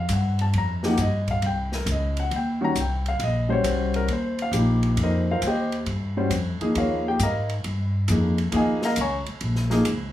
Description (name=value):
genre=modal jazz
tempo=135 BPM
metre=4/4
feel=swing 68% on 8ths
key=F minor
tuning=A4 = 441 Hz
part: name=warm concert grand piano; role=accompaniment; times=0.0-9.8 s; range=Eb3 to Db6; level=-24 LUFS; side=left 1 dB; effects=none
part: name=upright bass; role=bass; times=0.0-10.1 s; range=Bb1 to Ab2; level=-24 LUFS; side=equal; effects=none
part: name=open jazz drum kit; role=drums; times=0.1-10.0 s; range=hi-hat, kick drum, ride cymbal, snare drum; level=-34 LUFS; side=right 1 dB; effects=none
room=light reverb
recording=small room reverb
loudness=-21 LUFS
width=side -13 dB against mid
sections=0.0-10.1 A section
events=none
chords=0.0 F9sus4; 6.8 Eb9sus4